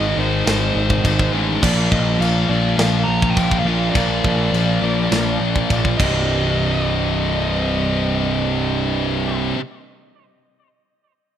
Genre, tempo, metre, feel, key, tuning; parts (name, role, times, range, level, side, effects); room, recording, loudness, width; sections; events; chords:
heavy metal; 103 BPM; 4/4; straight; C minor; A4 = 435 Hz
dark smooth lead guitar; melody; 0.0-9.4 s; C5 to Bb5; -25 LUFS; right 1 dB; overdrive, ping-pong delay
distorted electric guitar; riff; 0.0-9.6 s; C2 to Bb3; -24 LUFS; equal; overdrive
heavy high-gain guitar; riff; 0.0-9.6 s; C2 to Bb3; -27 LUFS; right 10 dB; distortion
scooped high-gain guitar; riff; 0.0-9.6 s; C2 to Bb3; -23 LUFS; left 11 dB; distortion
fuzz picked electric bass; bass; 0.0-9.5 s; C1 to Bb1; -21 LUFS; equal; overdrive
tight metal drum kit; drums; 0.5-6.1 s; china cymbal, crash cymbal, kick drum, snare drum; -23 LUFS; equal
small room ambience; rough home demo mix; -16 LUFS; side -10 dB against mid
0.0-6.3 A section; 6.3-8.6 B section
drum fill 6.0
0.0 Ab; 1.6 Bb; 6.0 Cm